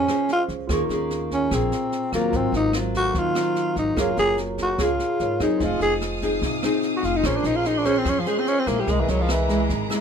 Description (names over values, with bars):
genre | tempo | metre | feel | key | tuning
bossa nova | 147 BPM | 4/4 | straight | Bb minor | A4 = 440 Hz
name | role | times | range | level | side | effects
growling tenor saxophone | melody | 0.0-9.7 s | E3 to Ab4 | -22 LUFS | left 1 dB | none
barky tine electric piano | accompaniment | 0.0-10.0 s | E4 to Db6 | -31 LUFS | right 3 dB | none
nylon-string guitar | accompaniment | 0.0-10.0 s | Ab2 to C5 | -26 LUFS | equal | none
upright bass | bass | 0.0-9.9 s | F1 to Ab2 | -28 LUFS | equal | none
jazz brush drum kit | drums | 0.1-10.0 s | kick drum, rim click, snare drum | -32 LUFS | right 1 dB | none
bright studio violin section | sustained chords | 5.6-10.0 s | Db4 to Eb6 | -32 LUFS | equal | none
room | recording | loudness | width
light reverb | minimal, uncompressed stereo recording | -20 LUFS | side -7 dB against mid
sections
0.0-10.0 A section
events
tenor saxophone solo 0.0-10.0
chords
0.0 Bbm9 (rootless); 0.7 Eb7sus4; 2.3 Ab13; 4.0 Gbmaj9; 5.6 Fm7; 7.2 Bbm9; 8.9 C7alt